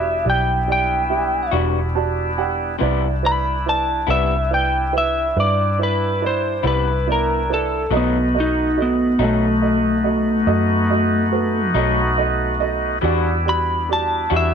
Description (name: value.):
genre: blues.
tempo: 47 BPM (dotted quarters).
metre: 12/8.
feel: straight.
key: E minor.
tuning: A4 = 440 Hz.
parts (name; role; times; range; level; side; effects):
lightly driven lead guitar; melody; 0.0-14.5 s; A3 to B5; -19 LUFS; left 1 dB; none.
dark upright piano; accompaniment; 0.0-14.5 s; B3 to B5; -24 LUFS; right 14 dB; none.
bright tonewheel organ; sustained chords; 0.0-14.5 s; G3 to F#4; -25 LUFS; left 1 dB; slow rotary speaker.
vintage muted fingered electric bass; bass; 0.0-14.5 s; E1 to G2; -23 LUFS; left 1 dB; none.
electric guitar through a small old amp; accompaniment; 1.5-14.5 s; B2 to F#4; -25 LUFS; left 16 dB; harmonic tremolo.
room: light reverb.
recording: 1960s-style stereo with parts hard left and right.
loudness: -16 LUFS.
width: side -7 dB against mid.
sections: 0.0-14.5 A section.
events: lead electric guitar solo 0.0-14.5; upright piano fill 1.5-2.8.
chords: 0.0 Em9; 2.8 Cmaj7; 7.9 B7; 13.0 Em9.